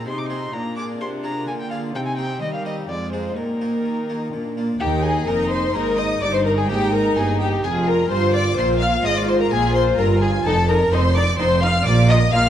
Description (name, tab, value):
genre	classical, baroque-style concerto movement with solo episodes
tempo	128 BPM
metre	3/4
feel	straight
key	Eb major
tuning	A4 = 439 Hz
part	dark violin	melody	0.0-12.5 s	G4 to D6	-24 LUFS	left 1 dB	none
part	warm chamber violin section	melody	0.0-12.5 s	Eb4 to F6	-28 LUFS	left 2 dB	none
part	warm chamber violin section	second line	0.0-12.5 s	D4 to F5	-26 LUFS	left 4 dB	none
part	harpsichord	accompaniment	0.0-12.5 s	Eb2 to Ab4	-29 LUFS	equal	none
part	rich studio viola section	accompaniment	0.0-12.4 s	G3 to F4	-27 LUFS	right 2 dB	none
part	warm chamber cello section	bass	0.0-12.5 s	Eb2 to Eb3	-24 LUFS	right 1 dB	none
part	rich chamber double bass section	bass	4.8-12.5 s	F1 to Eb2	-24 LUFS	right 3 dB	none
room	moderate recital hall reverb, RT60 1.6 s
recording	dark, warm production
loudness	-17 LUFS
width	side -10 dB against mid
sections	0.0-4.8 A section; 4.8-12.5 B section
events	none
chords	0.0 Fm7; 0.5 Bb7; 1.9 Cm; 2.9 Fm7; 3.4 Bbsus4; 4.3 Bb; 4.8 Eb5; 6.2 Eb/G; 7.6 F5; 9.0 Fm/Ab; 10.5 F5; 11.9 Bb5